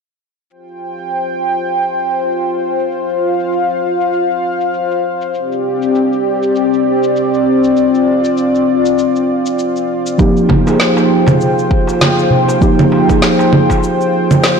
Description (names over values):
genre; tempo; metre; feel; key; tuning
organic downtempo; 99 BPM; 4/4; swing 58% on 16ths; F dorian; A4 = 443 Hz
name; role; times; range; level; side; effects
warm analog pad; sustained chords; 0.8-14.6 s; C4 to G5; -14 LUFS; left 1 dB; chorus, sidechain pumping
electronic shaker, congas and snare drum; drums; 0.5-14.6 s; none; -15 LUFS; right 2 dB; low-pass filter on perc, low-pass filter on snare
muted felt-like synth keys; accompaniment; 10.2-14.6 s; F3 to Ab4; -13 LUFS; right 2 dB; chorus, sidechain pumping, tape echo
electronic kick drum; drums; 10.2-13.8 s; none; -15 LUFS; equal; none
darbuka; percussion; 10.5-13.8 s; none; -21 LUFS; right 1 dB; none
room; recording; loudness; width
wet lush hall reverb, RT60 1.8 s; blown-out, overdriven recording, overdrive; -11 LUFS; side -5 dB against mid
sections
0.5-14.6 A section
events
none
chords
0.5 Fsus2; 5.3 C5; 10.2 Fm9